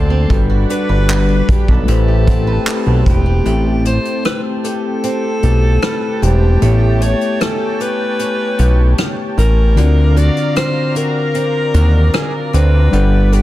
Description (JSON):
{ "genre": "contemporary R&B", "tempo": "76 BPM", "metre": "4/4", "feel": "straight", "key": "A dorian", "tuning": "A4 = 440 Hz", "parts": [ { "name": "breathy alto saxophone", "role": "melody", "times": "0.0-13.4 s", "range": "G4 to D5", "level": "-21 LUFS", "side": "equal", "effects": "ping-pong delay" }, { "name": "mellow tine electric piano", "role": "accompaniment", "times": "0.0-13.4 s", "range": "D3 to F#5", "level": "-20 LUFS", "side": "left 4 dB", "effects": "none" }, { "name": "lush unison pad", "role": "sustained chords", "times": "0.0-13.4 s", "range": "G3 to C6", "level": "-26 LUFS", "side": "left 2 dB", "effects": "chorus" }, { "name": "picked swing-style acoustic guitar", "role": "arpeggios", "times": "0.0-13.4 s", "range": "D3 to B4", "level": "-25 LUFS", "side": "right 6 dB", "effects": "none" }, { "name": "fat analog bass", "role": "bass", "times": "0.0-13.4 s", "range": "E1 to D#2", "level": "-12 LUFS", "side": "equal", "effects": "none" }, { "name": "vintage brush drum kit", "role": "drums", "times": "0.3-13.4 s", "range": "handclaps, hi-hat, kick drum, rim click", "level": "-18 LUFS", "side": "equal", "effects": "soft clipping on snare" }, { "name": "soft round pluck", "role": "texture", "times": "2.3-3.8 s", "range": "F#5 to B5", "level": "-37 LUFS", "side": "left 4 dB", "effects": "none" } ], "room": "small room ambience", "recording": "dense, heavily limited modern master", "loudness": "-12 LUFS", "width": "side -15 dB against mid", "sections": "0.0-3.5 A section; 3.5-13.4 B section", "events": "kick muted 3.5-13.4", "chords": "0.3 Gmaj7; 1.9 Am9; 6.6 A9; 9.8 D7alt" }